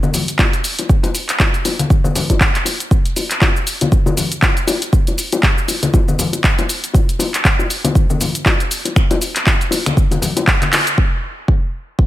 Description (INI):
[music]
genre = house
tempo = 119 BPM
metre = 4/4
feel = swing 57% on 16ths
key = none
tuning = none
[part]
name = punchy analog drum machine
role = drums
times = 0.0-11.1 s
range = cabasa, crash cymbal, finger snaps, handclaps, hi-hat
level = -18 LUFS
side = equal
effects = low-pass filter on perc, low-pass filter on hats, low-pass filter on snare, low-pass filter on cymbals, low-pass filter on room
[part]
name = congas and bongos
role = percussion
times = 0.0-10.8 s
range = none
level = -20 LUFS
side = left 4 dB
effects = none
[part]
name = electronic kick drum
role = drums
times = 0.4-12.1 s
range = none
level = -14 LUFS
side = equal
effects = none
[sound]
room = light reverb, digital ambience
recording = none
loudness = -13 LUFS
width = side -15 dB against mid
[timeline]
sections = 0.0-11.0 A section; 11.0-12.1 B section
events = drum fill 10.7; band accent 10.7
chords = none